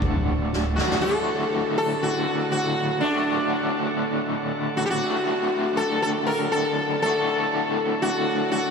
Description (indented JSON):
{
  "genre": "psychedelic rock",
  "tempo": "120 BPM",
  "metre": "4/4",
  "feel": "straight",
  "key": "D major",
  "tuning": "A4 = 440 Hz",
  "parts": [
    { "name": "sitar", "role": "melody", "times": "0.0-8.7 s", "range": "D4 to Bb4", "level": "-24 LUFS", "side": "left 1 dB", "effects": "ping-pong delay" },
    { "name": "bright tonewheel organ", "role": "sustained chords", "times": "0.0-8.7 s", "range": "A4 to A5", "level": "-34 LUFS", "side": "right 2 dB", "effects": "slow rotary speaker" },
    { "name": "raw garage guitar", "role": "riff", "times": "0.0-8.7 s", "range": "D2 to F#4", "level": "-26 LUFS", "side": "left 1 dB", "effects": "overdrive, tremolo" },
    { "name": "hollow-body short-scale fingered electric bass", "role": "bass", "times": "0.0-0.8 s", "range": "D1", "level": "-26 LUFS", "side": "equal", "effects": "none" },
    { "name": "soft-mallet drum kit", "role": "drums", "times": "0.0-1.0 s", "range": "kick drum, snare drum, toms", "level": "-30 LUFS", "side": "right 1 dB", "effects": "none" },
    { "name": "congas", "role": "percussion", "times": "0.0-1.0 s", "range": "none", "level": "barely audible", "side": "none", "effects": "none" }
  ],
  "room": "wet huge ambient reverb, RT60 8.1 s",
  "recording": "dreamy mix soaked in reverb",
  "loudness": "-21 LUFS",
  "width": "side -5 dB against mid",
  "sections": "0.0-1.0 A section; 1.0-8.7 B section",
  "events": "drum fill 0.4-1.0",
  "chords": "0.0 D",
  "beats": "0.02 0.52 | 1.03 1.53 2.03 2.54 | 3.04 3.54 4.04 4.54 | 5.04 5.54 6.04 6.54 | 7.04 7.54 8.04 8.54"
}